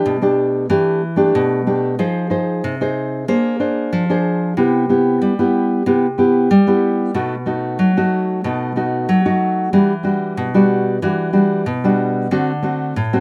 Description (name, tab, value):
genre	samba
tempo	93 BPM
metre	4/4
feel	straight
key	unclear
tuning	A4 = 444 Hz
part	nylon-string guitar	solo	0.0-13.2 s	A2 to C5	-17 LUFS	equal	none
room	light reverb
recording	close, detailed microphones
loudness	-17 LUFS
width	mono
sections	0.0-13.2 A section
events	none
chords	0.0 Em7; 2.0 Fm7; 3.3 Bb9; 4.6 Cmaj7; 7.2 B7; 9.7 Em9; 12.3 D7